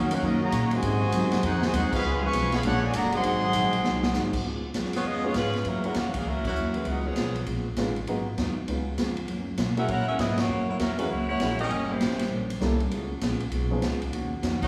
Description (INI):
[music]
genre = jazz, big band swing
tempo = 198 BPM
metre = 4/4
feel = swing 63% on 8ths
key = unclear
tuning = A4 = 440 Hz
[part]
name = clear trumpet section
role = melody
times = 0.0-4.3 s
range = Db4 to Db6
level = -30 LUFS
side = equal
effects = none
[part]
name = warm trombone section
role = second line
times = 0.0-4.3 s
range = Ab2 to Gb4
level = -33 LUFS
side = equal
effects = none
[part]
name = vintage hollow-body jazz guitar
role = accompaniment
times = 0.0-14.6 s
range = Gb2 to C5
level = -34 LUFS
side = equal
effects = none
[part]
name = bright trombone section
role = sustained chords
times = 0.0-4.4 s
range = Db3 to Gb4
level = -39 LUFS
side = equal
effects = none
[part]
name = upright bass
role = bass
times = 0.0-14.7 s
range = F#1 to Cb3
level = -33 LUFS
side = equal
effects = none
[part]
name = swinging big-band drum kit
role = drums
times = 0.1-14.7 s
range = crash cymbal, hi-hat, kick drum, ride cymbal, snare drum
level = -34 LUFS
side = equal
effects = none
[part]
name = warm saxophone section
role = melody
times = 5.0-7.5, 9.8-12.3, 14.6-14.7 s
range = Fb3 to Gb5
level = -32 LUFS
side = equal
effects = none
[part]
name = warm upright piano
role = accompaniment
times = 5.2-13.8 s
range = F3 to A4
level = -36 LUFS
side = equal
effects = none
[sound]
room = wet concert hall reverb, RT60 1.9 s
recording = recorded in a church or concert hall, small room ambience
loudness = -27 LUFS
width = mono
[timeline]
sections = 0.0-4.4 A section; 4.4-14.7 B section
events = band accent 1.9, 6.4, 10.3; drum fill 3.8-4.1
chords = 0.0 Ebm7; 0.8 Ab7; 2.0 Db7; 2.6 Bb7alt; 3.2 Ab7; 4.4 Db7; 5.7 Gb7; 6.9 Db7; 8.1 Abm7; 8.7 Db7; 9.3 Gb7; 11.7 Gdim7; 12.9 Db7; 14.1 Ebm7